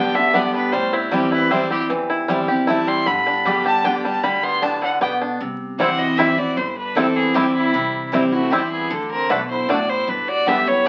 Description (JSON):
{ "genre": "bluegrass", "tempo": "154 BPM", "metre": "3/4", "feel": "straight", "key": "unclear", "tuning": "A4 = 440 Hz", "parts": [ { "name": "clear fiddle", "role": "melody", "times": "0.0-10.9 s", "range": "E4 to C6", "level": "-23 LUFS", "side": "equal", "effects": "none" }, { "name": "picked steel-string acoustic guitar", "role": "accompaniment", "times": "0.0-10.9 s", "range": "E2 to G4", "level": "-25 LUFS", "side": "equal", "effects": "none" }, { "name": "bluegrass banjo", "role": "arpeggios", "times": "0.0-10.9 s", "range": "D3 to G4", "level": "-24 LUFS", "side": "equal", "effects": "none" }, { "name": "mandolin", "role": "stabs", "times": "0.0-10.9 s", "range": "A3 to G5", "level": "-27 LUFS", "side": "equal", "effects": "none" }, { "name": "upright bass", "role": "bass", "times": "0.0-10.8 s", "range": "G1 to E2", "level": "-41 LUFS", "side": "equal", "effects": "none" }, { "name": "clear fiddle", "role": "second line", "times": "5.8-10.9 s", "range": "G3 to C5", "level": "-32 LUFS", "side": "equal", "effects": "none" } ], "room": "wet studio ambience, RT60 0.5 s", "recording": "very old 78 rpm record, vinyl crackle, nothing above 7.9 kHz", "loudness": "-19 LUFS", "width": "mono", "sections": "0.0-5.4 A section; 5.4-10.9 B section", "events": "none", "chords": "0.0 G; 0.7 Am7; 3.1 G; 5.4 C; 8.9 D; 10.1 G" }